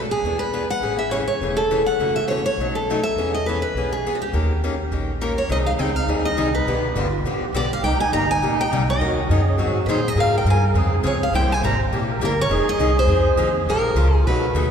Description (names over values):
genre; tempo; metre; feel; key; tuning
acoustic string swing (jazz manouche); 206 BPM; 4/4; swing 57% on 8ths; E major, Ab major from 5.5 s; A4 = 437 Hz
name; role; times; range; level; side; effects
picked steel-string acoustic guitar; accompaniment; 0.0-14.7 s; B2 to A#4; -24 LUFS; left 3 dB; none
upright bass; bass; 0.0-14.7 s; E1 to Bb2; -23 LUFS; equal; none
picked steel-string acoustic guitar; melody; 0.1-14.7 s; F#4 to Bb5; -22 LUFS; equal; none
musette accordion; second line; 5.5-14.7 s; Eb4 to C5; -26 LUFS; right 5 dB; none
room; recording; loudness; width
wet church reverb, RT60 3.2 s; recorded in a church or concert hall; -18 LUFS; side -7 dB against mid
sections
0.0-5.5 A section; 5.5-14.7 B section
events
none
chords
0.2 E7; 0.8 Amaj7; 2.0 F#m7; 2.6 B7; 3.2 E6; 4.3 D#7; 5.5 Abmaj7; 6.7 G7; 7.8 Cm7; 9.0 Ebm7; 9.6 Ab7; 10.2 Dbmaj7; 11.3 C7; 12.5 Fm7; 13.7 Bbm7